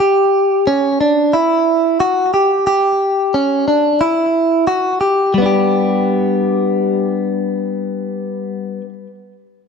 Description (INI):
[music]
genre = dream pop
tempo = 90 BPM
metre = 4/4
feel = straight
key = G lydian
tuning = A4 = 440 Hz
[part]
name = direct-recorded clean electric guitar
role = solo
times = 0.0-8.9 s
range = G3 to G4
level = -13 LUFS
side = equal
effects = lush chorus, ping-pong delay
[sound]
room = moderate lush hall reverb, RT60 1.9 s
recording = dark, warm production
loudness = -13 LUFS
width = side -6 dB against mid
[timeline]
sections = 0.0-5.3 A section; 5.3-8.0 B section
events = none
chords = 0.0 C#dim; 5.3 G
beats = | 0.00 0.67 1.34 2.00 | 2.67 3.34 4.00 4.67 | 5.34 6.00 6.67 7.34